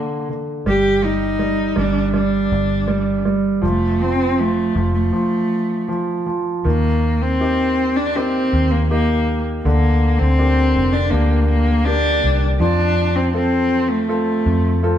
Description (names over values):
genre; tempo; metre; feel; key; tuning
pop ballad; 80 BPM; 4/4; straight; unclear; A4 = 441 Hz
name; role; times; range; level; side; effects
dark cello; melody; 0.0-15.0 s; A3 to G4; -19 LUFS; equal; none
clear baby grand piano; accompaniment; 0.0-15.0 s; D3 to A4; -21 LUFS; right 2 dB; none
vintage muted fingered electric bass; bass; 0.7-15.0 s; F1 to F2; -19 LUFS; equal; none
room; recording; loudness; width
wet stone room reverb, RT60 1.5 s; band playing live in one room; -15 LUFS; side -10 dB against mid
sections
0.0-6.7 A section; 6.7-15.0 B section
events
break 5.1-6.7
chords
0.0 N.C.; 0.7 G5; 3.6 F; 6.7 Eb; 9.7 Bb6; 12.6 F